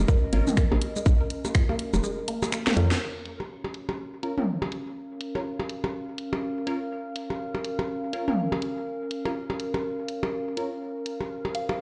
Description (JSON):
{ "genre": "minimal techno", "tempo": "123 BPM", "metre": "4/4", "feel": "swing 60% on 16ths", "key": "Bb minor", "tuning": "A4 = 437 Hz", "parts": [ { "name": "hollow knocking FM bass", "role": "bass", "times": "0.0-2.9 s", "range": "F1 to F2", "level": "-26 LUFS", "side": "equal", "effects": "sidechain pumping" }, { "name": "warbly tape-like pad", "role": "texture", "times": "0.0-11.8 s", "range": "Db4 to F5", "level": "-36 LUFS", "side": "equal", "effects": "chorus, built-in reverb, phaser, sidechain pumping" }, { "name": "resonant blip pluck", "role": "riff", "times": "0.1-2.8 s", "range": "F3 to Bb4", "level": "-37 LUFS", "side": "equal", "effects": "phaser, cassette tape, sidechain pumping, digital delay" }, { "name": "electronic kick drum", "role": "drums", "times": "0.1-1.7 s", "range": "none", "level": "-23 LUFS", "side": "equal", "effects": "overdrive" }, { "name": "garage drum kit", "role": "drums", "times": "0.1-11.8 s", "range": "crash cymbal, finger snaps, hi-hat, shaker, snare drum", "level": "-34 LUFS", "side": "equal", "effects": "overdrive, low-pass filter on hats, low-pass filter on perc, low-pass filter on snare, low-pass filter on cymbals" }, { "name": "wavetable chord stab", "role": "stabs", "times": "0.3-10.7 s", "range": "Db4 to Bb4", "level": "-38 LUFS", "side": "equal", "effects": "dub echo" }, { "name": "electronic toms and percussion blips", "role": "percussion", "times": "0.5-11.8 s", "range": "none", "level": "-33 LUFS", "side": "equal", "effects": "dub echo" }, { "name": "soft synth bell", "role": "melody", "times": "11.5-11.8 s", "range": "F5", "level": "-34 LUFS", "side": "equal", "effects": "chorus" } ], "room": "moderate studio reverb, RT60 0.6 s", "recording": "played on a big sound system in a bare room, stone room reverb, nothing above 10.3 kHz", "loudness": "-28 LUFS", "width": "mono", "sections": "0.0-3.0 A section; 3.0-11.8 B section", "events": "kick drops out 2.0-3.0; drum fill 2.6-3.0; band accent 2.9", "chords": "0.0 Bbm" }